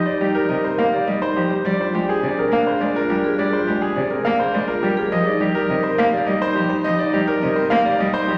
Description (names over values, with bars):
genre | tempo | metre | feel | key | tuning
classical, minimalist pattern music | 104 BPM | 3/4 | straight | C minor | A4 = 440 Hz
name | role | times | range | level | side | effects
clear concert grand piano | melody | 0.0-8.4 s | G4 to F5 | -23 LUFS | equal | none
mellow clarinet | second line | 0.0-8.4 s | D4 to Eb4 | -30 LUFS | equal | none
warm cello | accompaniment | 0.0-8.4 s | C3 to Bb3 | -26 LUFS | equal | none
vibraphone with medium mallets | arpeggios | 0.1-8.3 s | Eb4 to Bb4 | -27 LUFS | equal | none
room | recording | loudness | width
wet concert hall reverb, RT60 2.1 s | none | -20 LUFS | mono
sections
0.0-8.4 A section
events
none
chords
0.0 Cm9; 1.7 Bb9; 5.1 Cm11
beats
0.50 1.08 | 1.65 2.23 2.81 | 3.38 3.96 4.54 | 5.12 5.69 6.27 | 6.85 7.42 8.00